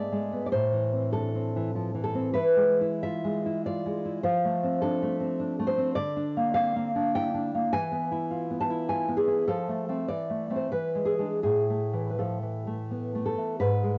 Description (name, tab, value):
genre	romantic piece for solo classical guitar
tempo	78-108 BPM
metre	3/4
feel	rubato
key	A minor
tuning	A4 = 439 Hz
part	nylon-string guitar	solo	0.0-14.0 s	G#2 to A5	-28 LUFS	equal	cassette tape
room	light reverb, small room ambience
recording	home recording on cassette, nothing above 7.7 kHz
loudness	-28 LUFS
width	mono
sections	0.0-13.6 A section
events	none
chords	0.0 E/G# (rootless); 0.5 Am; 2.4 E; 4.2 F; 6.0 Bb/D; 7.7 E; 9.5 F; 10.1 Am/E; 10.7 E7; 11.4 A5